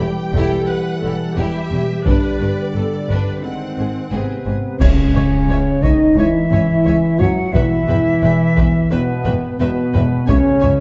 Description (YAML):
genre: cinematic, epic orchestral film score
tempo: 88 BPM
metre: 4/4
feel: straight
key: C# minor from 4.8 s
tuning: A4 = 440 Hz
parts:
  - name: rich symphonic violin section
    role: melody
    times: 0.0-10.7 s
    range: D5 to G#5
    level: -36 LUFS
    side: equal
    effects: none
  - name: rich symphonic violin section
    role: second line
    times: 0.0-10.7 s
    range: B#3 to E5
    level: -31 LUFS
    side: equal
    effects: none
  - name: warm symphonic viola section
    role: accompaniment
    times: 0.0-10.7 s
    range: B#3 to C#5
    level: -31 LUFS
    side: equal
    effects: none
  - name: bright trombone section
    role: sustained chords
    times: 0.0-10.8 s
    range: B2 to G#3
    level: -23 LUFS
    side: equal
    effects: none
  - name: mellow French horn section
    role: sustained chords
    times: 0.0-10.8 s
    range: B3 to G4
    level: -22 LUFS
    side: equal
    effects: none
  - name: clear symphonic cello section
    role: bass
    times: 0.0-10.7 s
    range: C#2 to G#2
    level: -26 LUFS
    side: equal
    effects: none
  - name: clear symphonic double bass section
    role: bass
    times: 0.0-10.7 s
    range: E1 to C#2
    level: -26 LUFS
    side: equal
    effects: none
  - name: taiko ensemble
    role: drums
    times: 0.3-10.8 s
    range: none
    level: -22 LUFS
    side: equal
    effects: none
  - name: silver concert flute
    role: second line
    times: 4.1-10.7 s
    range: B4 to F#5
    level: -29 LUFS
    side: equal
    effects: none
  - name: clash cymbals and concert bass drum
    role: percussion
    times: 4.8-6.1 s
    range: none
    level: -25 LUFS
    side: equal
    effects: none
  - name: timpani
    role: percussion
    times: 4.8-5.8 s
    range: C#3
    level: -28 LUFS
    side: equal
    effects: none
room: wet recital hall reverb, RT60 1.5 s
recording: dark, warm production, nothing above 7.9 kHz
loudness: -17 LUFS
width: mono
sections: 0.0-4.8 A section; 4.8-10.8 B section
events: band accent 4.8-5.5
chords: 0.0 Em; 2.1 G; 3.4 G#7; 4.8 C#m; 7.6 Em; 10.3 C#m